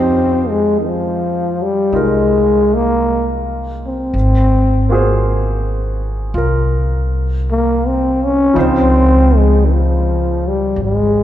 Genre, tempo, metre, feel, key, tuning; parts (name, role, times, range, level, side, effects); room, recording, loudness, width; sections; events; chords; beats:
jazz ballad; 54 BPM; 4/4; swing 68% on 8ths; F minor; A4 = 439 Hz
growling trombone; melody; 0.0-11.2 s; Eb3 to Db4; -14 LUFS; left 1 dB
clear baby grand piano; accompaniment; 0.0-11.2 s; Db3 to C5; -22 LUFS; right 2 dB
upright bass; bass; 0.0-11.2 s; Ab1 to F2; -16 LUFS; equal
wet church reverb, RT60 3.0 s; recorded in a church or concert hall; -12 LUFS; side -12 dB against mid
0.0-11.2 A section
0.0 Fsus2; 4.1 Ab13; 8.6 Dbmaj9
0.82 1.93 3.04 | 4.14 5.25 6.35 7.45 | 8.55 9.65 10.76